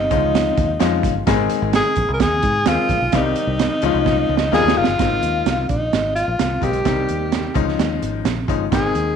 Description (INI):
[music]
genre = uptempo 1960s-style soul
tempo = 129 BPM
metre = 4/4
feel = straight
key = Ab major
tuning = A4 = 440 Hz
[part]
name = breathy tenor saxophone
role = melody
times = 0.0-9.2 s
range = Eb4 to Bb4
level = -20 LUFS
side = equal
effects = slapback echo
[part]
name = bright concert grand piano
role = accompaniment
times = 0.0-9.2 s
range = Eb3 to Ab4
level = -22 LUFS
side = left 11 dB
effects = none
[part]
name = fingered electric bass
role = bass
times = 0.0-9.1 s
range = Gb1 to Ab2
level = -24 LUFS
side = equal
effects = none
[part]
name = crunchy breakbeat drum kit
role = drums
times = 0.1-9.1 s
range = hi-hat, kick drum, snare drum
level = -22 LUFS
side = right 6 dB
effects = none
[sound]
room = moderate plate reverb, RT60 1.2 s, studio ambience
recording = 1960s-style stereo with parts hard left and right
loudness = -16 LUFS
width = side -7 dB against mid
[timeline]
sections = 0.0-5.0 A section; 5.0-9.2 B section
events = drum fill 4.1-5.0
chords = 0.1 Dbadd9; 1.3 Ab; 3.1 Cm; 3.8 Dbadd9; 4.5 Ebadd9; 5.0 Ab; 6.9 Cm; 7.6 Dbadd9